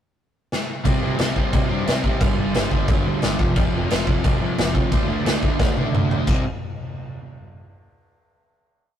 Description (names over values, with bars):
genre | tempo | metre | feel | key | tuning
punk rock | 177 BPM | 4/4 | straight | unclear | A4 = 440 Hz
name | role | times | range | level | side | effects
raw garage drum kit | drums | 0.5-6.4 s | crash cymbal, kick drum, snare drum, toms | -21 LUFS | equal | none
crunchy overdriven guitar | riff | 0.8-6.4 s | F2 to D4 | -24 LUFS | right 1 dB | none
fuzz picked electric bass | bass | 0.9-6.4 s | F1 to A2 | -27 LUFS | equal | overdrive
room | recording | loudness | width
light reverb | rough rehearsal-room recording, tube saturation | -18 LUFS | side -10 dB against mid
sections
0.0-0.8 pickup bar; 0.8-6.3 riff; 6.3-7.6 final chord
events
drum fill 0.5-0.8, 5.6-6.3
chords
0.0 N.C.; 0.8 C5; 2.2 G5; 3.4 F5; 4.9 D5; 6.3 C5